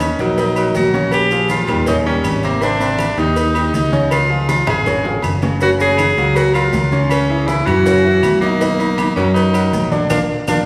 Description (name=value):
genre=latin, salsa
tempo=160 BPM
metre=4/4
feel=straight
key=Eb minor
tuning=A4 = 445 Hz
part: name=clear tenor saxophone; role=melody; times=0.0-10.6 s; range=Bb3 to Ab4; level=-20 LUFS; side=equal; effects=none
part: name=bright grand piano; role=accompaniment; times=0.0-10.6 s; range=C3 to Eb5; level=-22 LUFS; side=equal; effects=none
part: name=fingered electric bass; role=bass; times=0.0-10.6 s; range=Gb1 to Gb2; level=-21 LUFS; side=equal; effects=none
part: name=claves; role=percussion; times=0.0-10.6 s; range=none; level=-36 LUFS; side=equal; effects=none
part: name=congas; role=percussion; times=0.0-10.6 s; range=none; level=-28 LUFS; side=equal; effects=none
part: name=cowbell and bongos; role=percussion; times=0.0-10.6 s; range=none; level=-29 LUFS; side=equal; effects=none
part: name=maracas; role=percussion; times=0.0-10.6 s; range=none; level=-39 LUFS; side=equal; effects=none
part: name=timbales and agogo bells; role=percussion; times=0.0-10.6 s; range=none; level=-28 LUFS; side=equal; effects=none
room=wet scoring stage reverb, RT60 1.6 s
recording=recorded in a church or concert hall, small room ambience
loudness=-16 LUFS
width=mono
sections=0.0-10.7 A section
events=drum fill 4.5-5.6; band accent 10.1-10.7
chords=0.0 Ebm7; 1.1 Bbm7; 1.9 Eb7; 2.6 Abmaj7; 4.1 Db; 5.6 Gbmaj7; 7.1 Dbm; 7.9 Gb5; 8.6 Bmaj7; 10.1 Bb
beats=0.00 0.38 0.75 | 1.12 1.50 1.87 2.25 | 2.62 2.99 3.37 3.74 | 4.12 4.49 4.86 5.24 | 5.61 5.99 6.36 6.74 | 7.11 7.49 7.86 8.23 | 8.61 8.98 9.36 9.73 | 10.11 10.48